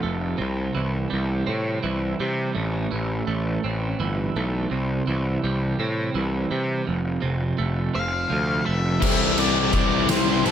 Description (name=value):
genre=quiet-loud alternative rock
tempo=56 BPM (dotted quarters)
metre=6/8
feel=straight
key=unclear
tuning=A4 = 441 Hz
part: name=twelve-string electric guitar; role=arpeggios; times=0.0-9.0 s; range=F2 to C4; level=-27 LUFS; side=right 5 dB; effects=tremolo, analog delay
part: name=fuzz picked electric bass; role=bass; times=0.0-10.5 s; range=F1 to C3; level=-25 LUFS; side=left 1 dB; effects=overdrive
part: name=octave-fuzz lead guitar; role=melody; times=8.0-10.5 s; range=A4 to F5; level=-26 LUFS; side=left 2 dB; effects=distortion
part: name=distorted electric guitar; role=riff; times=9.0-10.5 s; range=C3 to E4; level=-26 LUFS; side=left 15 dB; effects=distortion
part: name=distorted electric guitar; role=riff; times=9.0-10.5 s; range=C3 to C4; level=-28 LUFS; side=equal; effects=distortion
part: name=scooped high-gain guitar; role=riff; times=9.0-10.5 s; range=C3 to E4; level=-27 LUFS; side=right 11 dB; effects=distortion
part: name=oversized low-tuned drum kit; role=drums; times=9.0-10.5 s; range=crash cymbal, kick drum, ride cymbal, snare drum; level=-22 LUFS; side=left 1 dB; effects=none
room=light reverb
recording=none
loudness=-21 LUFS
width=side -9 dB against mid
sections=0.0-9.0 A section; 9.0-10.5 B section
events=none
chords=0.4 C; 2.5 Am; 4.7 C; 6.9 F; 9.0 C